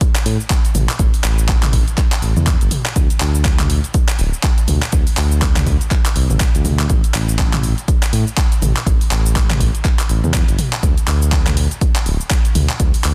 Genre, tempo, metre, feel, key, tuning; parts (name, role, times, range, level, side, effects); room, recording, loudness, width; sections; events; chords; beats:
afro house; 122 BPM; 4/4; swing 58% on 16ths; A4 = 440 Hz
deep house drum kit; drums; 0.0-13.1 s; handclaps, hi-hat, shaker, toms; -23 LUFS; equal; studio reverb
electronic kick drum; drums; 0.0-12.9 s; -18 LUFS; equal; studio reverb
smooth synth bass; bass; 0.3-13.1 s; D1 to A2; -19 LUFS; equal; sidechain pumping
digital ambience; dense, heavily limited modern master; -16 LUFS; mono
0.0-13.1 A section
0.01 0.50 | 0.99 1.49 1.98 2.47 | 2.96 3.45 3.94 4.44 | 4.93 5.42 5.91 6.40 | 6.89 7.39 7.88 8.37 | 8.86 9.35 9.85 10.34 | 10.83 11.32 11.81 12.30 | 12.80